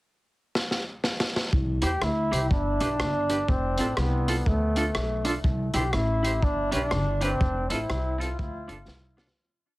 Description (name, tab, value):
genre	ska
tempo	122 BPM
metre	4/4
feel	swing 62% on 8ths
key	C major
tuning	A4 = 436 Hz
part	crunchy breakbeat drum kit	drums	0.6-9.4 s	hi-hat, kick drum, rim click, snare drum	-28 LUFS	equal	none
part	upright bass	bass	1.5-9.3 s	F1 to E2	-28 LUFS	equal	none
part	bright trombone	melody	1.8-9.1 s	A3 to G4	-28 LUFS	equal	tape echo
part	semi-hollow electric guitar	accompaniment	1.8-9.3 s	C4 to C5	-32 LUFS	right 1 dB	tremolo, tape echo
room	light reverb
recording	heavily compressed radio sound, multiband compression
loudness	-24 LUFS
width	side -19 dB against mid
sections	0.0-1.5 pickup bar; 1.5-9.4 head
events	drum fill 0.6-1.5, 8.9-9.4; fade-out 7.4-9.4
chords	0.0 N.C.; 1.5 C; 2.5 G; 3.5 F; 4.5 Dm; 5.4 C; 6.4 G; 7.4 F; 8.4 Dm